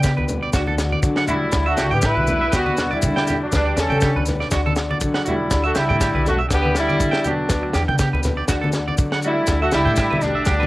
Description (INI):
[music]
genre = highlife guitar band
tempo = 121 BPM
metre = 4/4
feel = swing 54% on 16ths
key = unclear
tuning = A4 = 440 Hz
[part]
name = nylon-string guitar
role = accompaniment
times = 0.0-10.7 s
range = D3 to B4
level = -28 LUFS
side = left 3 dB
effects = none
[part]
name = electric guitar at the edge of break-up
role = arpeggios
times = 0.0-10.7 s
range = F#4 to G5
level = -26 LUFS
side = right 4 dB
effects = analog delay
[part]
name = upright bass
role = bass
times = 0.0-10.7 s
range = B1 to D3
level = -23 LUFS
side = equal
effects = none
[part]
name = tight funk drum kit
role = drums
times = 0.0-10.6 s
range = kick drum, snare drum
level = -24 LUFS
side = equal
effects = cassette tape
[part]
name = maracas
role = percussion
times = 0.0-10.6 s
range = none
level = -31 LUFS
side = left 3 dB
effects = none
[part]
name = congas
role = percussion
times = 0.2-10.7 s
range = none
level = -27 LUFS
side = left 1 dB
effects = none
[part]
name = warm horn section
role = melody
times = 1.3-10.7 s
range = F#3 to B4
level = -20 LUFS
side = equal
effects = none
[sound]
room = light reverb, small room ambience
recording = home recording on cassette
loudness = -17 LUFS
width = side -18 dB against mid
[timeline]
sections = 0.0-10.7 A section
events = none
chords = 0.0 G; 0.5 D; 1.5 Em; 2.5 G/D; 4.5 D; 5.5 Em; 6.5 G/D; 8.5 D; 9.5 Em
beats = 0.04 | 0.54 1.04 1.54 2.03 | 2.53 3.03 3.53 4.02 | 4.52 5.02 5.51 6.01 | 6.50 7.00 7.50 7.99 | 8.49 8.98 9.48 9.98 | 10.47